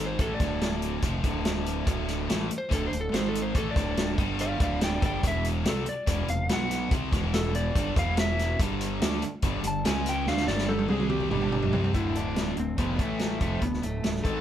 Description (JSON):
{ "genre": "classic rock", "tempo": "143 BPM", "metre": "4/4", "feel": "straight", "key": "unclear", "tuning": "A4 = 440 Hz", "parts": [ { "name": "electric slide guitar", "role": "melody", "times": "0.0-14.2 s", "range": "A3 to A5", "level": "-32 LUFS", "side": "equal", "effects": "none" }, { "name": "biting overdriven guitar", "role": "riff", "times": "0.0-14.4 s", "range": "D2 to D4", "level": "-34 LUFS", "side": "left 8 dB", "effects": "none" }, { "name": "raw garage guitar", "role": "riff", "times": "0.0-14.4 s", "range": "D2 to D4", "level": "-34 LUFS", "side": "right 8 dB", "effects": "overdrive" }, { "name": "fuzz fingered electric bass", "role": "bass", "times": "0.0-14.4 s", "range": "D1 to D2", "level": "-32 LUFS", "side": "equal", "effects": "overdrive" }, { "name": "vintage drum kit", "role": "drums", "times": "0.2-14.3 s", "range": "hi-hat, kick drum, snare drum, toms", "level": "-28 LUFS", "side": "equal", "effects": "none" }, { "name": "cranked stack guitar", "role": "riff", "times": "11.9-14.4 s", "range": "D2 to A3", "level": "-36 LUFS", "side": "equal", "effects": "overdrive" }, { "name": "bluesy overdriven lead guitar", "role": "second line", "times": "14.2-14.4 s", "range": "A4", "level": "-31 LUFS", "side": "left 3 dB", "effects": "distortion" } ], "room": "light reverb", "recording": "band playing live in one room", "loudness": "-25 LUFS", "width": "side -10 dB against mid", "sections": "0.0-11.9 A section; 11.9-14.4 B section", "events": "electric slide guitar solo 0.0-11.9; drum fill 10.3-11.9", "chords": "0.2 D5; 3.1 G#5; 3.6 D5; 4.2 G5; 4.6 Dsus4; 5.2 E5; 5.7 Fsus2; 6.5 B5; 6.9 C5; 7.1 E5; 7.8 G5; 8.0 E5; 8.6 Gsus2; 9.9 C#5; 10.3 Gsus2; 10.9 C5; 11.3 G5; 11.9 D5; 13.0 A5; 13.4 D5", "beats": "| 0.19 0.61 1.03 1.45 | 1.87 2.29 2.71 3.14 | 3.56 3.98 4.40 4.82 | 5.24 5.66 6.08 6.50 | 6.92 7.34 7.76 8.18 | 8.60 9.01 9.43 9.85 | 10.27 10.69 11.11 11.53 | 11.95 12.37 12.79 13.21 | 13.63 14.05" }